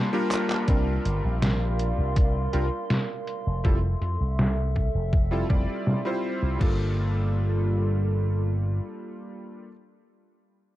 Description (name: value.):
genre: vaporwave.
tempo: 81 BPM.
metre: 4/4.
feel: straight.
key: G dorian.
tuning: A4 = 440 Hz.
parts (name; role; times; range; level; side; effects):
bright electric grand piano; accompaniment; 0.0-9.7 s; G3 to D5; -30 LUFS; equal; analog chorus, tape echo.
warbly tape-like pad; sustained chords; 0.0-9.7 s; G3 to C6; -34 LUFS; right 1 dB; chorus, built-in reverb.
detuned 8-bit digital drum machine; drums; 0.3-6.8 s; cabasa, crash cymbal, handclaps, hi-hat, snare drum; -28 LUFS; equal; low-pass filter on hats, low-pass filter on perc, low-pass filter on snare, low-pass filter on cymbals, low-pass filter on room.
slap bass with an envelope filter; bass; 0.7-8.8 s; F1 to F2; -25 LUFS; equal; low-pass filter.
electronic kick drum; drums; 0.7-6.8 s; none; -22 LUFS; equal; none.
room: light reverb.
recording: dark, warm production.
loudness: -23 LUFS.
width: side -15 dB against mid.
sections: 0.7-6.6 A section; 6.6-9.6 B section.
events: break 0.0-0.7; drum fill 0.3-0.7; filter sweep on drum 0.7-6.6; filter sweep on slap bass 0.7-6.6.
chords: 0.0 Gm9; 0.7 C9sus4; 3.3 Fmaj7; 6.6 Gm9.